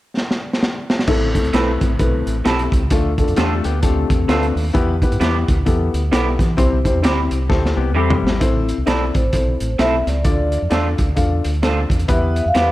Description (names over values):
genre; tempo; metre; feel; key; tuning
uptempo 1960s-style soul; 131 BPM; 4/4; swing 60% on 8ths; A minor; A4 = 440 Hz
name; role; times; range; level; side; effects
crunchy breakbeat drum kit; drums; 0.2-12.7 s; crash cymbal, hi-hat, kick drum, snare drum, toms; -19 LUFS; equal; none
dark upright piano; accompaniment; 1.1-12.7 s; A3 to F5; -21 LUFS; left 3 dB; none
deep dub fingered electric bass; bass; 1.1-12.7 s; G#1 to E3; -20 LUFS; equal; none
electric guitar through a small old amp; stabs; 1.5-12.7 s; G3 to A4; -25 LUFS; right 5 dB; wide subtle chorus
mellow electric guitar; riff; 3.4-4.5, 7.5-8.4 s; G3 to A4; -25 LUFS; left 8 dB; none
vibraphone with soft mallets; melody; 9.1-12.7 s; C5 to F5; -21 LUFS; equal; none
room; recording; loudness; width
light reverb, small room ambience; none; -15 LUFS; side -16 dB against mid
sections
0.0-1.1 A section; 1.1-8.4 B section; 8.4-12.7 C section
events
drum fill 0.2-1.1, 7.5-8.4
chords
0.0 N.C.; 1.1 Am; 2.9 Dm; 4.7 Em; 6.6 C; 8.4 Am; 10.3 Dm; 12.1 Em